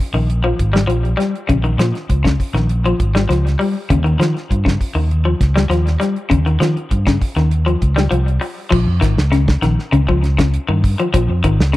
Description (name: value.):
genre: afrobeat.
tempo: 100 BPM.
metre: 4/4.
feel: straight.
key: Bb dorian.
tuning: A4 = 440 Hz.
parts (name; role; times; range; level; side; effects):
damped 70s drum kit; drums; 0.0-11.8 s; crash cymbal, hi-hat, kick drum, snare drum; -19 LUFS; equal; none.
electric guitar at the edge of break-up; arpeggios; 0.1-11.8 s; Db3 to G3; -18 LUFS; left 3 dB; spring reverb, tape echo.
fingered electric bass; bass; 0.1-11.8 s; Ab1 to Eb3; -16 LUFS; equal; none.
room: little or no reverb.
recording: dry, close 1970s-style studio recording.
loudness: -14 LUFS.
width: side -16 dB against mid.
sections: 0.0-8.7 A section; 8.7-11.8 B section.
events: none.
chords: 0.0 Bbm7; 3.9 Eb7; 8.7 Bbm.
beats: 0.29 0.89 | 1.49 2.09 2.69 3.29 | 3.90 4.50 5.10 5.71 | 6.31 6.91 7.52 8.12 | 8.72 9.33 9.93 10.53 | 11.13 11.73.